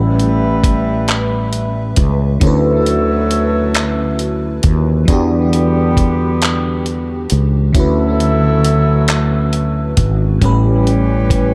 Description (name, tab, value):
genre	slow six-eight R&B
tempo	45 BPM (dotted quarters)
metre	6/8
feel	straight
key	unclear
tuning	A4 = 440 Hz
part	FM electric piano with soft pad layer	accompaniment	0.0-11.5 s	A2 to E5	-21 LUFS	equal	chorus, phaser, dub echo
part	dark horn section	stabs	0.0-11.5 s	D3 to B4	-23 LUFS	equal	dub echo
part	fretless electric bass	bass	0.0-11.5 s	G#1 to E2	-17 LUFS	equal	none
part	dusty soul sampler-style drum kit	drums	0.2-11.5 s	handclaps, hi-hat, kick drum	-19 LUFS	equal	none
room	light reverb, digital ambience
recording	echo-heavy mix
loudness	-14 LUFS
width	mono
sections	0.0-11.5 A section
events	none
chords	0.0 A9; 2.4 Dmaj13; 5.1 Em9; 7.7 Dmaj13; 10.4 A9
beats	1.08 | 2.41 3.75 | 5.08 6.41 | 7.75 9.08 | 10.41